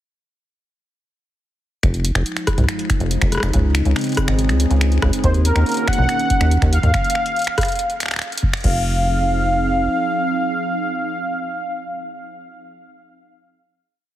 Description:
IDM; 141 BPM; 4/4; straight; F phrygian; A4 = 441 Hz
warbly tape-like pad; sustained chords; 1.8-12.0 s; Db3 to F5; -25 LUFS; right 1 dB; chorus, built-in reverb
deep acid bass; bass; 1.8-9.9 s; F1 to Eb2; -17 LUFS; equal; tube saturation
booming analog drum machine; drums; 1.8-8.7 s; crash cymbal, finger snaps, hi-hat, rim click, toms; -24 LUFS; equal; ping-pong delay
electronic kick drum; drums; 1.8-8.7 s; -21 LUFS; equal
warm velvety synth lead; melody; 5.2-12.0 s; Bb4 to Gb5; -22 LUFS; left 1 dB; chorus, digital delay
light reverb, digital ambience; heavily compressed radio sound; -16 LUFS; side -12 dB against mid
1.8-8.6 groove; 8.6-12.0 final chord
band accent 8.5
1.8 Fm7; 3.5 Db5; 5.2 Ebm7; 6.9 N.C.; 8.6 Fm7

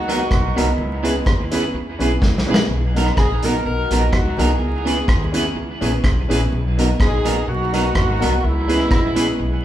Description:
ska; 126 BPM; 4/4; swing 55% on 8ths; B major; A4 = 439 Hz
warm horn section; melody; 0.0-9.6 s; G#3 to A#4; -23 LUFS; equal
upright bass; bass; 0.0-9.6 s; G#1 to E2; -22 LUFS; equal
electric guitar at the edge of break-up; accompaniment; 0.1-9.4 s; F#3 to B4; -23 LUFS; right 2 dB; spring reverb, dub echo
warm upright piano; stabs; 0.1-9.4 s; B3 to B4; -25 LUFS; left 1 dB
vintage drum kit; drums; 0.1-9.3 s; hi-hat, kick drum, rim click, snare drum; -20 LUFS; equal
wet large studio reverb, RT60 0.9 s; band playing live in one room, vinyl crackle; -16 LUFS; side -12 dB against mid
0.0-9.6 A section
drum fill 2.2-2.7
0.0 Bmaj7; 0.8 C#m7; 2.7 Bmaj7; 4.6 C#m7; 6.5 Bmaj7; 8.4 C#m7

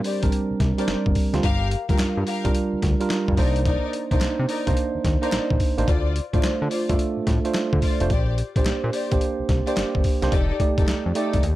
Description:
R&B, new jack swing; 108 BPM; 4/4; swing 66% on 16ths; C dorian; A4 = 439 Hz
tine electric piano; accompaniment; 0.0-11.5 s; G3 to D5; -25 LUFS; right 4 dB
warm studio string section; stabs; 0.0-11.4 s; Eb4 to F5; -30 LUFS; left 5 dB; ping-pong delay
boom bap sampler-style drum kit; drums; 0.0-11.6 s; hi-hat, kick drum, snare drum; -23 LUFS; left 1 dB
fat analog bass; bass; 0.2-11.6 s; F1 to D3; -24 LUFS; equal
group handclap; percussion; 2.0-11.0 s; -39 LUFS; left 2 dB
light reverb; dark, warm production; -20 LUFS; side -16 dB against mid
0.0-10.3 A section; 10.3-11.6 B section
0.0 Gm7; 3.4 Cm9; 5.9 Dm7; 8.1 Bb69; 10.3 F13

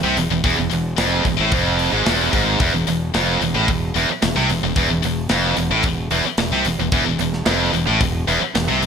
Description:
heavy metal; 111 BPM; 4/4; straight; A4 = 438 Hz
heavy high-gain guitar; riff; 0.0-8.9 s; E2 to C3; -20 LUFS; left 14 dB; distortion
tight distorted guitar; riff; 0.0-8.9 s; E2 to C3; -21 LUFS; right 9 dB; distortion
fuzz fingered electric bass; bass; 0.0-8.9 s; E1 to C2; -24 LUFS; left 1 dB; overdrive
tight metal drum kit; drums; 0.2-8.9 s; hi-hat, kick drum, snare drum; -24 LUFS; equal; gated reverb
moderate plate reverb, RT60 2.0 s; bright 1980s-style digital production; -16 LUFS; side -6 dB against mid
0.0-8.9 A section
0.0 E

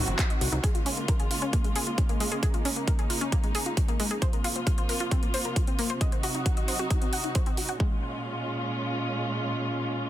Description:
uplifting trance; 134 BPM; 4/4; straight; Bb minor; A4 = 444 Hz
dark studio string section; sustained chords; 0.0-10.1 s; Bb2 to Gb4; -31 LUFS; right 1 dB; sidechain pumping
analog pluck; arpeggios; 0.0-8.0 s; Ab3 to Gb5; -33 LUFS; left 3 dB; chorus, sidechain pumping, ping-pong delay
fat analog bass; bass; 0.0-0.6 s; Gb1 to C2; -28 LUFS; equal; sidechain pumping
big-room dance drum kit; drums; 0.1-7.8 s; handclaps, hi-hat; -32 LUFS; right 2 dB; overdrive
electronic kick drum; drums; 0.2-7.9 s; -26 LUFS; equal; overdrive
little or no reverb; dense, heavily limited modern master; -25 LUFS; side -13 dB against mid
0.0-7.8 A section; 7.8-10.1 B section
0.0 Cdim; 0.6 Bbm7; 4.2 Fsus4; 6.0 Cdim; 7.8 Bbm7

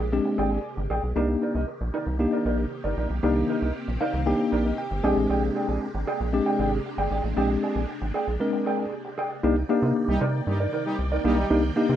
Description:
funk; 116 BPM; 4/4; straight; C minor; A4 = 445 Hz
phased string machine; sustained chords; 0.0-12.0 s; C3 to G5; -35 LUFS; right 1 dB; ensemble chorus, phaser
mellow electric guitar; riff; 0.0-12.0 s; Eb4 to Ab5; -30 LUFS; right 3 dB; wide subtle chorus
rubbery square bass; bass; 0.0-12.0 s; G1 to C3; -27 LUFS; equal
mellow tine electric piano; accompaniment; 0.1-12.0 s; Ab3 to Ab5; -24 LUFS; left 2 dB; medium stereo tremolo
analog synth brass; second line; 10.1-11.5 s; G3 to G4; -29 LUFS; right 2 dB; chorus
light reverb; rough home demo mix; -23 LUFS; side -10 dB against mid
0.0-9.4 A section; 9.4-12.0 B section
tine electric piano fill 3.7-5.3
0.0 Bb13; 1.2 Cm9; 5.0 Bb13; 9.4 Cm9

